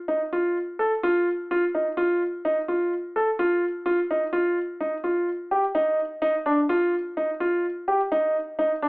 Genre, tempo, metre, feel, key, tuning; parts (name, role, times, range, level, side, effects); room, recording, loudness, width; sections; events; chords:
progressive instrumental, progressive; 127 BPM; 5/4; straight; A4 = 440 Hz
warm concert grand piano; solo; 0.1-8.9 s; D4 to A4; -22 LUFS; equal
moderate large studio reverb, RT60 1.1 s; band playing live in one room, AM radio sound; -22 LUFS; side -27 dB against mid
0.0-8.9 A section